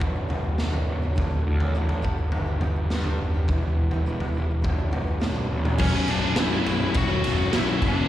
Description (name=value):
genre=quiet-loud alternative rock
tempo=104 BPM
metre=4/4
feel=straight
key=B minor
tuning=A4 = 440 Hz
part: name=picked steel-string acoustic guitar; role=arpeggios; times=0.0-5.8 s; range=D2 to G4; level=-33 LUFS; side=right 2 dB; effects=slapback echo
part: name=fuzz picked electric bass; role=bass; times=0.0-8.1 s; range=B0 to G2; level=-29 LUFS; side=equal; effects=overdrive
part: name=raw garage drum kit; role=drums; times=0.0-8.0 s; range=crash cymbal, kick drum, ride cymbal, snare drum, toms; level=-24 LUFS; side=equal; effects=none
part: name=high-gain lead guitar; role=melody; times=5.8-8.1 s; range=C#4 to F#4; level=-27 LUFS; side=left 3 dB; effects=distortion, plate reverb, tape echo
part: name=scooped high-gain guitar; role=riff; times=5.8-8.1 s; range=B1 to C#4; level=-30 LUFS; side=right 12 dB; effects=distortion
part: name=thick fuzz guitar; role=riff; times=5.8-8.1 s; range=B1 to C#4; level=-26 LUFS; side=left 7 dB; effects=distortion
room=little or no reverb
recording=live gig heard through the venue's PA, recital hall reverb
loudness=-22 LUFS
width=side -13 dB against mid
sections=0.0-5.8 A section; 5.8-8.1 B section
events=none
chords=0.0 Bm; 1.2 D; 2.0 G; 3.5 Em; 4.7 Bm; 5.8 Bsus2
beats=0.02 0.60 | 1.18 1.76 2.34 2.92 | 3.50 4.08 4.65 5.23 | 5.81 6.38 6.96 7.53